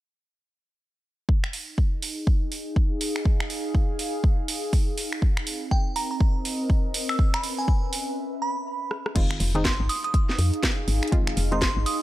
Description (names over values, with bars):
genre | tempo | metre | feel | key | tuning
deep house | 122 BPM | 4/4 | swing 61% on 16ths | F minor | A4 = 440 Hz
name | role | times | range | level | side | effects
electronic kick drum | drums | 1.3-11.7 s | none | -22 LUFS | equal | none
warbly tape-like pad | texture | 2.0-12.0 s | C4 to F5 | -32 LUFS | equal | chorus, built-in reverb, sidechain pumping
house drum kit | drums | 1.4-12.0 s | crash cymbal, finger snaps, hi-hat, rim click, snare drum | -29 LUFS | right 1 dB | none
glassy synth bell | melody | 5.7-12.0 s | G5 to Fb6 | -30 LUFS | right 2 dB | chorus, tremolo, tape echo
filtered dub chord stab | stabs | 9.2-11.7 s | Eb3 to F4 | -30 LUFS | equal | chorus, sidechain pumping, tape echo
woody FM bass | bass | 9.2-11.8 s | F1 to F2 | -24 LUFS | equal | sidechain pumping
room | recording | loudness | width
digital ambience | none | -22 LUFS | side -16 dB against mid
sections
1.3-9.2 A section; 9.2-12.0 B section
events
break 8.2-9.2; drum fill 8.9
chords
1.3 Fm7; 5.2 Cm7; 6.9 Db7(no3); 9.2 Fm7